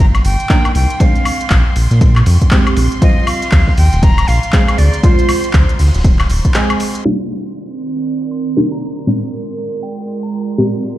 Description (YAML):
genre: deep house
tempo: 119 BPM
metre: 4/4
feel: swing 60% on 16ths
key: C minor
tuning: A4 = 439 Hz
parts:
  - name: breathy bright jazz flute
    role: melody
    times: 0.0-5.8 s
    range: C5 to Bb5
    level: -22 LUFS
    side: equal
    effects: vintage 12-bit sampler grit, dub echo
  - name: filtered dub chord stab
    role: stabs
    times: 0.0-11.0 s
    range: Bb2 to Bb4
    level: -18 LUFS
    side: right 1 dB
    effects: lush chorus, sidechain pumping, ping-pong delay
  - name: round analog bass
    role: bass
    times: 0.0-6.4 s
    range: D1 to Bb2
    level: -12 LUFS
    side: equal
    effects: none
  - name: string machine, violins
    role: texture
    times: 0.0-11.0 s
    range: C6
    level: -30 LUFS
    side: equal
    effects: ensemble chorus
  - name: crunchy breakbeat drum kit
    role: drums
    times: 0.1-11.0 s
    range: hi-hat, ride cymbal, snare drum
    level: -34 LUFS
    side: equal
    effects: sidechain pumping on cymbals, high-pass filter on cymbals, low-pass filter on cymbals, sidechain pumping on hats, high-pass filter on hats, low-pass filter on hats, high-pass filter on snare, low-pass filter on snare, high-pass filter on room, low-pass filter on room
  - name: deep house drum kit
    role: drums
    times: 0.1-7.0 s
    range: handclaps, hi-hat, woodblock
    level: -21 LUFS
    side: left 2 dB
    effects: none
  - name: electronic kick drum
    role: drums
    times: 0.5-6.5 s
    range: none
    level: -12 LUFS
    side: equal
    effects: none
  - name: warbly tape-like pad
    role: sustained chords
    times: 7.6-11.0 s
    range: Eb3 to D5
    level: -21 LUFS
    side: right 4 dB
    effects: chorus, built-in reverb, sidechain pumping
  - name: soft synth bell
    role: melody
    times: 8.3-10.7 s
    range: G5 to C6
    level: -40 LUFS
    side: equal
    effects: chorus, ping-pong delay
room: light reverb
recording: played on a big sound system in a bare room, stone room reverb, vinyl crackle, low-pass filter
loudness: -11 LUFS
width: side -14 dB against mid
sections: 0.0-7.1 A section; 7.1-11.0 B section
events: filter sweep on synth stab 0.0-7.1; break 6.5-7.1; filter sweep 7.1-11.0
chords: 0.0 Cm11; 1.0 Bb7; 3.0 Eb69; 4.8 Dm7b5; 7.1 Cm11; 9.1 Bb7